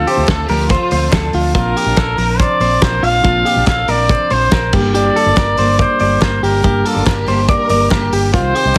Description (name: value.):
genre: jangly indie pop.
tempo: 142 BPM.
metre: 4/4.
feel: straight.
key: unclear.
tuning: A4 = 444 Hz.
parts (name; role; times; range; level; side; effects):
warm trumpet; melody; 0.0-8.8 s; A4 to F5; -19 LUFS; equal; none.
picked steel-string acoustic guitar; accompaniment; 0.0-8.8 s; G2 to G4; -24 LUFS; equal; none.
clean electric guitar; arpeggios; 0.0-8.8 s; F4 to D5; -20 LUFS; equal; none.
vintage muted fingered electric bass; bass; 0.0-8.8 s; G1 to D2; -21 LUFS; equal; none.
warm symphonic violin section; second line; 0.1-1.4, 6.8-8.2 s; D4 to C5; -25 LUFS; equal; none.
loose indie drum kit; drums; 0.1-8.8 s; crash cymbal, hi-hat, kick drum, snare drum; -20 LUFS; equal; none.
group handclap; percussion; 0.3-8.8 s; none; -34 LUFS; equal; none.
room: light reverb.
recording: heavily compressed radio sound.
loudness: -14 LUFS.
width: mono.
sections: 0.0-8.8 A section.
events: none.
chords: 0.0 Dm7; 1.6 Bbadd9; 4.7 Gm.